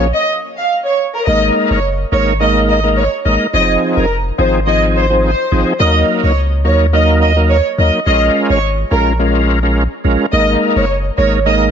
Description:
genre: dancehall.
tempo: 106 BPM.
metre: 4/4.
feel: straight.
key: unclear.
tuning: A4 = 440 Hz.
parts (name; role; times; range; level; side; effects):
overdriven tonewheel organ; accompaniment; 0.0-11.7 s; F3 to Bb4; -16 LUFS; equal; chorus vibrato, slow rotary speaker.
punchy sub bass; bass; 0.0-11.7 s; F1 to Eb2; -15 LUFS; equal; none.
dark studio violin section; melody; 0.1-11.6 s; Bb4 to F5; -15 LUFS; right 1 dB; none.
room: light reverb.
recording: nothing above 7.8 kHz.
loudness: -11 LUFS.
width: side -8 dB against mid.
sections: 0.0-1.3 A section; 1.3-11.7 B section.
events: stop 0.1-1.3.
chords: 0.0 N.C.; 1.3 Absus2; 3.5 Fm7; 5.8 Ebm; 8.1 Bbm7; 10.3 Absus2.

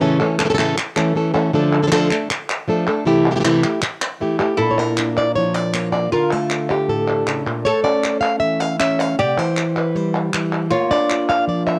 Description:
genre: flamenco.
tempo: 157 BPM.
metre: 4/4.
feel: straight.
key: unclear.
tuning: A4 = 440 Hz.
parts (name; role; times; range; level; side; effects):
flamenco guitar; melody; 0.0-11.8 s; A2 to F5; -20 LUFS; equal; cassette tape.
palmas hand claps; percussion; 0.2-11.8 s; none; -26 LUFS; equal; none.
oud; second line; 4.6-11.8 s; E4 to A4; -26 LUFS; equal; cassette tape.
room: light reverb, small room ambience.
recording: home recording on cassette.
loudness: -19 LUFS.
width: mono.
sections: 0.0-4.6 A section; 4.6-11.8 B section.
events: none.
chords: 0.0 A; 1.5 Dm; 3.1 C6; 4.6 Bb; 6.1 Dm; 7.7 A; 9.2 C; 10.7 Bb.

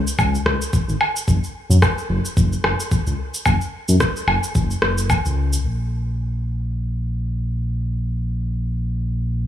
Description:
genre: organic downtempo.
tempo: 110 BPM.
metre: 4/4.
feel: swing 57% on 16ths.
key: unclear.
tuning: A4 = 440 Hz.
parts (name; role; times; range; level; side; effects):
electronic cabasa, woodblock and rim click; drums; 0.1-5.6 s; none; -22 LUFS; equal; low-pass filter on perc, low-pass filter on snare, low-pass filter on room.
smooth synth bass; bass; 0.2-9.5 s; Gb1 to Gb2; -20 LUFS; equal; sidechain pumping.
electronic kick drum; drums; 0.2-5.2 s; none; -18 LUFS; equal; none.
room: light reverb.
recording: studio ambience.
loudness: -18 LUFS.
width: side -11 dB against mid.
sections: 0.0-5.6 A section; 5.6-9.5 B section.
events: none.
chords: none.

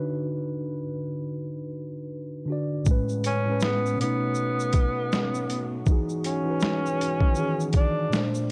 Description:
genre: lo-fi hip hop.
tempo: 80 BPM.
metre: 4/4.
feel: swing 61% on 16ths.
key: E major.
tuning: A4 = 441 Hz.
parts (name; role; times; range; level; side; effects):
mellow tine electric piano; accompaniment; 0.0-8.5 s; A2 to D5; -30 LUFS; equal; cassette tape, low-pass filter.
mellow French horn section; sustained chords; 2.9-8.5 s; E2 to F#4; -42 LUFS; equal; none.
boom bap sampler-style drum kit; drums; 2.9-8.5 s; hi-hat, kick drum, shaker, snare drum; -27 LUFS; equal; overdrive, vintage 12-bit sampler grit.
breathy tenor saxophone; melody; 3.3-8.3 s; B3 to D4; -31 LUFS; equal; low-pass filter.
room: light reverb, digital ambience.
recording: none.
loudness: -26 LUFS.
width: mono.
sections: 0.0-2.9 A section; 2.9-8.5 B section.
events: none.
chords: 0.0 D6; 2.9 Amaj9; 4.0 B9; 5.9 Emaj9.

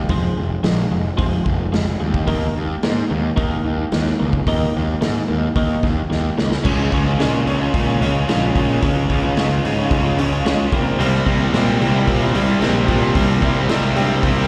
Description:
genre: quiet-loud alternative rock.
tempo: 110 BPM.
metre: 4/4.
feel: straight.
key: unclear.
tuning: A4 = 443 Hz.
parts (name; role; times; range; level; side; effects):
twelve-string electric guitar; arpeggios; 0.0-14.5 s; C3 to F4; -25 LUFS; equal; lush chorus, tape echo, slapback echo.
fuzz picked electric bass; bass; 0.1-14.5 s; F1 to Bb2; -23 LUFS; equal; overdrive.
raw garage drum kit; drums; 0.1-14.4 s; crash cymbal, hi-hat, kick drum, snare drum; -24 LUFS; equal; none.
thick fuzz guitar; riff; 6.7-14.5 s; C3 to Db4; -24 LUFS; equal; distortion, slapback echo.
distorted electric guitar; riff; 11.0-14.5 s; C3 to C4; -24 LUFS; equal; overdrive, slapback echo.
room: small room ambience.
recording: live gig heard through the venue's PA, recital hall reverb.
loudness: -18 LUFS.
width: mono.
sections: 0.0-6.7 A section; 6.7-14.5 B section.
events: drum fill 6.1-6.7.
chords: 0.0 Fm; 2.3 Eb5; 6.7 Db; 10.7 C7.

